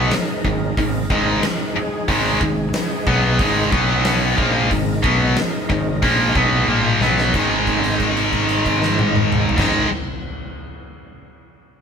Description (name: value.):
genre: hard rock.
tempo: 91 BPM.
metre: 4/4.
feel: straight.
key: G# dorian.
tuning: A4 = 440 Hz.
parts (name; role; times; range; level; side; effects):
overdriven tonewheel organ; sustained chords; 0.0-9.9 s; G#3 to C#5; -28 LUFS; equal; slow rotary speaker, chorus vibrato.
tight distorted guitar; riff; 0.0-9.9 s; G#2 to B3; -18 LUFS; equal; distortion.
growling fingered electric bass; bass; 0.0-9.9 s; G#1 to B1; -23 LUFS; equal; overdrive.
huge arena drum kit; drums; 0.1-9.7 s; crash cymbal, hi-hat, kick drum, snare drum, toms; -22 LUFS; equal; none.
room: moderate stone room reverb, RT60 1.3 s.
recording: band playing live in one room.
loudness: -15 LUFS.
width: side -6 dB against mid.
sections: 0.0-7.3 A section; 7.3-10.0 B section.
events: drum fill 6.7-7.3; held note 7.3-9.6.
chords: 0.0 G#m; 3.7 B5; 4.4 G#m; 7.3 G#5.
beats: 0.12 0.78 1.43 | 2.09 2.74 3.40 4.06 | 4.71 5.37 6.03 6.68 | 7.34 8.00 8.65 9.31.